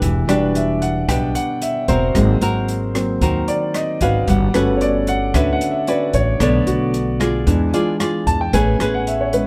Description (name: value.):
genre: bossa nova.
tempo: 113 BPM.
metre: 4/4.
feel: straight.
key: unclear.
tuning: A4 = 440 Hz.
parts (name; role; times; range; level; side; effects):
nylon-string guitar; accompaniment; 0.0-9.5 s; B2 to D5; -23 LUFS; equal; none.
warm concert grand piano; accompaniment; 0.0-9.5 s; D3 to A5; -22 LUFS; equal; none.
upright bass; bass; 0.0-9.5 s; E1 to E2; -23 LUFS; equal; none.
open jazz drum kit; drums; 0.0-9.5 s; hi-hat, kick drum, rim click; -27 LUFS; equal; none.
room: little or no reverb.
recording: close, detailed microphones.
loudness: -18 LUFS.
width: mono.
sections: 0.0-9.5 A section.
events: grand piano solo 0.0-9.5.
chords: 0.0 Em7; 2.1 G#9; 4.3 Gmaj9#11; 6.4 Bm9; 7.5 E7b9; 8.5 Amaj9.